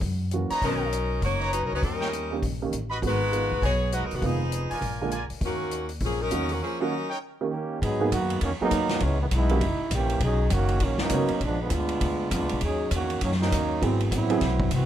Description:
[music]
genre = jazz, big band swing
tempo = 200 BPM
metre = 4/4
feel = swing 61% on 8ths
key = Eb minor, G# minor from 7.8 s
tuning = A4 = 440 Hz
[part]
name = upright bass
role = bass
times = 0.0-14.9 s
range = F1 to G#2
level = -28 LUFS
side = equal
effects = none
[part]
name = swinging big-band drum kit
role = drums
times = 0.0-14.8 s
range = hi-hat, kick drum, ride cymbal, snare drum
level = -32 LUFS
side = left 1 dB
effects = none
[part]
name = warm baby grand piano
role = accompaniment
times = 0.3-11.3, 13.8-14.4 s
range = D3 to A#4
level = -29 LUFS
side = right 4 dB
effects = none
[part]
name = brilliant trumpet section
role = stabs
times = 0.5-7.2 s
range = D#4 to Cb6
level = -31 LUFS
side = right 1 dB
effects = none
[part]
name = bright saxophone section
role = melody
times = 0.6-7.1 s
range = Eb3 to Db5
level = -28 LUFS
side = left 2 dB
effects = none
[part]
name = clear trombone section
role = second line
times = 7.5-14.9 s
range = B2 to G#4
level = -27 LUFS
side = right 2 dB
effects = none
[sound]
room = little or no reverb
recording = none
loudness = -24 LUFS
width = side -11 dB against mid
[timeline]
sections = 0.0-7.8 A section; 7.8-14.9 B section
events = trombone section solo 7.8-14.9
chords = 0.0 Gb7; 0.6 Bmaj9; 1.8 Eb7; 3.0 Abm7; 4.2 Fm7b5; 4.8 Bb7; 5.4 Ebm7; 7.2 Eb7; 7.8 G#m9; 9.0 C#m9; 9.6 F#7b9; 10.2 Bmaj9; 11.4 A#7b9; 12.6 D#m7; 13.8 G#7alt

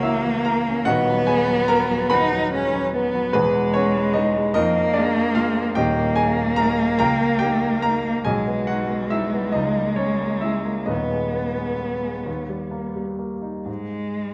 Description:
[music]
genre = classical, romantic duo for cello and grand piano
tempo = 41-50 BPM (dotted quarters)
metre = 6/8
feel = rubato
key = unclear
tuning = A4 = 440 Hz
[part]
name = warm cello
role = melody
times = 0.0-14.3 s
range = G#3 to D#4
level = -25 LUFS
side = equal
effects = none
[part]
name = warm baby grand piano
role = accompaniment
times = 0.0-14.3 s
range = D#1 to B5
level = -24 LUFS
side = equal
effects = none
[sound]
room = wet recital hall reverb, RT60 1.7 s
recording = none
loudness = -21 LUFS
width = mono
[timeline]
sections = 0.0-13.7 A section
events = none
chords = 0.0 A#dim/C#; 0.9 B/D#; 3.4 E; 4.6 A#7/E#; 5.8 D#; 7.0 D#7/C#; 8.3 G#m/B; 9.6 A#dim/C#; 10.9 G#m/D#; 12.3 D#; 13.7 N.C.

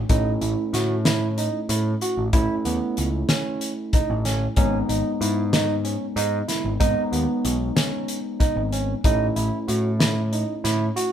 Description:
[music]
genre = progressive instrumental, band music in an uneven meter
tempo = 188 BPM (eighths)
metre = 7/8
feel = straight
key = unclear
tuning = A4 = 437 Hz
[part]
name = overdriven tine electric piano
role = accompaniment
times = 0.0-11.1 s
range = G#3 to E4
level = -28 LUFS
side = left 1 dB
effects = none
[part]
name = overdriven picked electric bass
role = bass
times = 0.0-10.9 s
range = G#1 to A2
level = -25 LUFS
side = equal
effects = none
[part]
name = barky tine electric piano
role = arpeggios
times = 0.1-11.1 s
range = B3 to F#4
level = -26 LUFS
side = right 5 dB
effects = none
[part]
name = loose indie drum kit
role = drums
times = 0.1-11.1 s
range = hi-hat, kick drum, snare drum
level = -23 LUFS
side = left 1 dB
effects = none
[sound]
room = light reverb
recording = band playing live in one room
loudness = -20 LUFS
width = side -9 dB against mid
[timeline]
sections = 0.1-11.1 A section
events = none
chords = 0.0 A; 4.6 G#m; 9.0 A

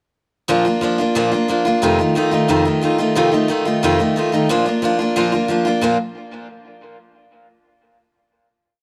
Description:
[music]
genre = rock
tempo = 180 BPM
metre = 4/4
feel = straight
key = Bb major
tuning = A4 = 440 Hz
[part]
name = picked steel-string acoustic guitar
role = solo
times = 0.5-6.0 s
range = F2 to F4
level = -18 LUFS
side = equal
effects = none
[sound]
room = light reverb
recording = none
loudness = -17 LUFS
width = mono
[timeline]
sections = 0.5-5.8 A section; 5.8-7.2 final chord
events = none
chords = 0.5 Bb; 1.8 F7; 4.5 Bb

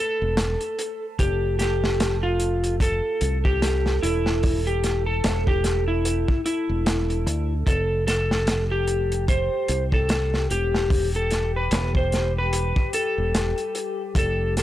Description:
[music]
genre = trip hop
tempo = 74 BPM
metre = 4/4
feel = swing 58% on 16ths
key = E phrygian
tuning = A4 = 441 Hz
[part]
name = electric slide guitar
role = melody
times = 0.0-14.6 s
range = E4 to C5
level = -25 LUFS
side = left 2 dB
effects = tape echo
[part]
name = deep dark ambient pad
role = sustained chords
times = 0.0-14.6 s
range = G4 to A4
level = -32 LUFS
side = right 3 dB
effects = chorus, built-in reverb
[part]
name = fingered electric bass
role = bass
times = 0.2-14.6 s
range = E1 to D2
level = -25 LUFS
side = equal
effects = none
[part]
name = crunchy breakbeat drum kit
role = drums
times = 0.4-14.6 s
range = hi-hat, kick drum, snare drum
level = -25 LUFS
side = equal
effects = none
[sound]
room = small room ambience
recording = dry, gritty hardware recording, transformer saturation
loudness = -21 LUFS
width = side -13 dB against mid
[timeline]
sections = 0.0-14.6 A section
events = none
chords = 0.0 Esus4; 1.2 Fmaj7; 4.4 Emadd11; 7.7 Fsus2; 10.9 Em

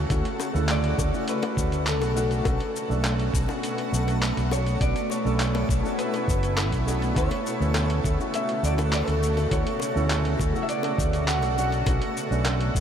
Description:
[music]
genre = sunset chillout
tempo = 102 BPM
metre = 4/4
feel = straight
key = unclear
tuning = A4 = 443 Hz
[part]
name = dark baby grand piano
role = accompaniment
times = 0.0-12.8 s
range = C#3 to A4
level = -31 LUFS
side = moving between left 2 dB and right 6 dB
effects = auto-pan, ping-pong delay
[part]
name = shimmering ambient pad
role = sustained chords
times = 0.0-12.8 s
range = B2 to F#4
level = -30 LUFS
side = equal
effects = chorus, built-in reverb
[part]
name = fretless electric bass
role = bass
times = 0.0-12.8 s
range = F#1 to D2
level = -25 LUFS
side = equal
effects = none
[part]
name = twinkling granular texture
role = texture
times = 0.0-12.8 s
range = A4 to C#6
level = -38 LUFS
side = left 1 dB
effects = built-in reverb
[part]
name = dusty soul sampler-style drum kit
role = drums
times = 0.1-12.8 s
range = handclaps, hi-hat, shaker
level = -33 LUFS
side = left 1 dB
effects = overdrive
[part]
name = electronic kick drum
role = drums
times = 0.1-12.8 s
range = none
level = -27 LUFS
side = equal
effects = overdrive
[part]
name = bongos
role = percussion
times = 0.4-12.6 s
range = none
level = -39 LUFS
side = left 6 dB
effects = none
[part]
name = electric guitar at the edge of break-up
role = melody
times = 0.7-11.7 s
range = A4 to F#5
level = -31 LUFS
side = equal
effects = vintage 12-bit sampler grit, analog delay
[sound]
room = moderate huge ambient reverb, RT60 7.5 s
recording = dreamy mix soaked in reverb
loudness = -22 LUFS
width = side -8 dB against mid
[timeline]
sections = 0.0-12.8 A section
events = none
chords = 0.0 Bm7; 7.2 Dmaj7; 11.6 Bm7

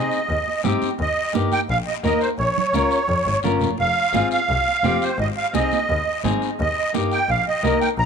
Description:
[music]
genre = latin, cumbia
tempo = 172 BPM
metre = 4/4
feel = straight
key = unclear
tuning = A4 = 440 Hz
[part]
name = musette accordion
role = melody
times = 0.0-8.1 s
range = C5 to Bb5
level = -21 LUFS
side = right 3 dB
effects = none
[part]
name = clean electric guitar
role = accompaniment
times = 0.0-7.9 s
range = Bb3 to Bb4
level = -25 LUFS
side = left 3 dB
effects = none
[part]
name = rich double bass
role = bass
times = 0.0-8.1 s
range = F1 to Ab2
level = -25 LUFS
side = left 2 dB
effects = none
[part]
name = guiro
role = percussion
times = 0.1-8.1 s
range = none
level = -36 LUFS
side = left 18 dB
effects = none
[part]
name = congas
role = percussion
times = 0.5-8.1 s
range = none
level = -28 LUFS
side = right 13 dB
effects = none
[sound]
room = light reverb, small room ambience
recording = 1960s-style stereo with parts hard left and right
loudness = -18 LUFS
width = side -6 dB against mid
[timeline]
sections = 0.0-8.1 A section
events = none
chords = 0.0 Ab; 1.0 Eb; 2.4 Bbm; 3.8 Fm; 5.2 Ab; 6.6 Eb

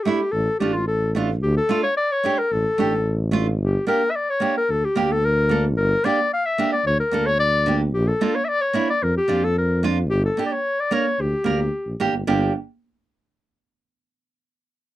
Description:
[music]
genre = klezmer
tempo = 111 BPM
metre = 4/4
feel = straight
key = G dorian sharp4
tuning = A4 = 440 Hz
[part]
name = warm clarinet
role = melody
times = 0.0-12.5 s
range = F4 to F5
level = -21 LUFS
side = left 2 dB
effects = none
[part]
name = nylon-string guitar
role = accompaniment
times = 0.1-12.5 s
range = A3 to Bb4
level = -23 LUFS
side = right 5 dB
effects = none
[part]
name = mellow tuba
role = bass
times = 0.3-12.5 s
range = G1 to F2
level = -23 LUFS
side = equal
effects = none
[sound]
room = light reverb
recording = dry, close 1970s-style studio recording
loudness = -19 LUFS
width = side -14 dB against mid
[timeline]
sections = 0.0-12.3 A section; 12.3-14.4 B section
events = none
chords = 0.0 Dm; 3.6 Gm; 7.9 Bb; 10.1 Gm

